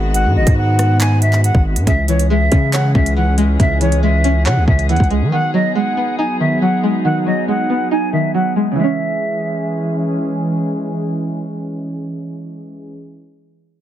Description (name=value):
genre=hip hop, drill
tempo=139 BPM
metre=4/4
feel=half-time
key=C# minor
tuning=A4 = 440 Hz
part: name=dark studio string section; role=sustained chords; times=0.0-12.9 s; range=D#3 to G#4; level=-21 LUFS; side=equal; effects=none
part: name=distorted 808-style bass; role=bass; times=0.0-5.3 s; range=G#1 to E3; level=-15 LUFS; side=equal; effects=distortion
part: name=silver concert flute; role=melody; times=0.1-10.0 s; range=C#5 to G#5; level=-20 LUFS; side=equal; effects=digital delay
part: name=drill drum kit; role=drums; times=0.1-5.2 s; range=handclaps, hi-hat, kick drum, rim click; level=-17 LUFS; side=equal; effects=none
part: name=string-like resonator pluck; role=accompaniment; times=1.9-13.0 s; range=C#3 to C#5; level=-18 LUFS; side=equal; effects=chorus, phaser
room=little or no reverb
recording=dense, heavily limited modern master, low-pass filter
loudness=-14 LUFS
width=side -11 dB against mid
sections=0.0-1.9 A section; 1.9-8.8 B section; 8.8-12.2 C section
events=filter sweep 1.9-8.8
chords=0.0 G#m7; 1.9 C#m; 5.3 G#m7; 8.8 C#m